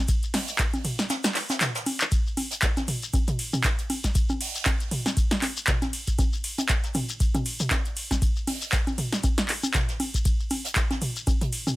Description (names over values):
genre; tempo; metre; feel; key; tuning
house; 118 BPM; 4/4; swing 56% on 16ths; none; none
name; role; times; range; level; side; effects
electro analog drum machine; drums; 0.1-11.8 s; congas, handclaps, hi-hat, ride cymbal, snare drum, toms; -26 LUFS; equal; overdrive
electronic kick drum; drums; 0.1-11.4 s; none; -25 LUFS; equal; overdrive
jazz brush drum kit; drums; 0.1-11.7 s; hi-hat, shaker, snare drum; -35 LUFS; right 2 dB; sidechain pumping on hats, high-pass filter on hats, high-pass filter on snare, sidechain pumping on perc, high-pass filter on perc, high-pass filter on room
shekere; percussion; 0.1-11.8 s; none; -34 LUFS; left 4 dB; none
room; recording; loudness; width
little or no reverb; none; -23 LUFS; side -18 dB against mid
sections
0.0-11.8 A section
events
kick drops out 1.1-2.1; drum fill 1.6-2.1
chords
none